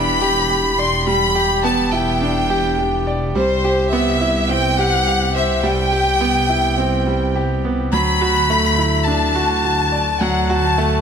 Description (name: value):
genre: piano and strings electronica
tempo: 105 BPM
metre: 4/4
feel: straight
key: unclear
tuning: A4 = 440 Hz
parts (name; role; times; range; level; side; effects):
- rich chamber violin section; melody; 0.0-11.0 s; C5 to C6; -18 LUFS; left 1 dB; none
- clear concert grand piano; riff; 0.0-11.0 s; F#3 to D5; -19 LUFS; right 2 dB; digital delay
- dark detuned saw bass; bass; 0.0-11.0 s; E1 to D2; -22 LUFS; left 1 dB; none
room: moderate lush hall reverb, RT60 3.0 s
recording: none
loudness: -15 LUFS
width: side -7 dB against mid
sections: 0.0-11.0 A section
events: none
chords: 0.0 Em7; 3.4 Cmaj7; 7.9 Dadd9